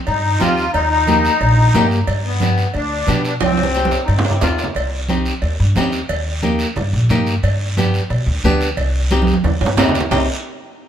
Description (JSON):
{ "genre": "latin, cumbia", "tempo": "179 BPM", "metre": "4/4", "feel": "straight", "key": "C minor", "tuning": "A4 = 440 Hz", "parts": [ { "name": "accordion", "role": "melody", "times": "0.1-4.4 s", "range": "Bb3 to F4", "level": "-18 LUFS", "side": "left 3 dB", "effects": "light tremolo tuning" }, { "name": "upright bass", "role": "bass", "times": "0.1-10.3 s", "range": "Bb1 to B2", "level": "-18 LUFS", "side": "equal", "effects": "none" }, { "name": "congas", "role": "percussion", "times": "0.1-10.2 s", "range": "none", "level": "-22 LUFS", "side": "right 5 dB", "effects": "none" }, { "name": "cowbell and timbales", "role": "percussion", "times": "0.1-10.2 s", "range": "none", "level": "-24 LUFS", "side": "right 3 dB", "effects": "none" }, { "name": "guiro", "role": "percussion", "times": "0.1-10.2 s", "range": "none", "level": "-28 LUFS", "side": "right 2 dB", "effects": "none" }, { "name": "flamenco guitar", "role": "accompaniment", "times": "0.4-10.3 s", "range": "Bb3 to G4", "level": "-21 LUFS", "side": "left 2 dB", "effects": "none" } ], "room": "light reverb", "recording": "minimal, uncompressed stereo recording, lossy compression artefacts", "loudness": "-14 LUFS", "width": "side -9 dB against mid", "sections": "0.0-4.8 A section; 4.8-10.1 B section", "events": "drum fill 3.4-4.8, 9.1-10.1", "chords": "0.0 Cm; 0.7 Eb; 2.1 G; 3.4 Cm; 6.1 Eb; 7.4 G; 8.8 Cm", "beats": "0.07 0.41 | 0.74 1.08 1.41 1.75 | 2.08 2.41 2.75 3.08 | 3.42 3.75 4.09 4.42 | 4.76 5.09 5.43 5.76 | 6.10 6.43 6.77 7.10 | 7.44 7.77 8.11 8.44 | 8.78 9.11 9.45 9.78 | 10.12" }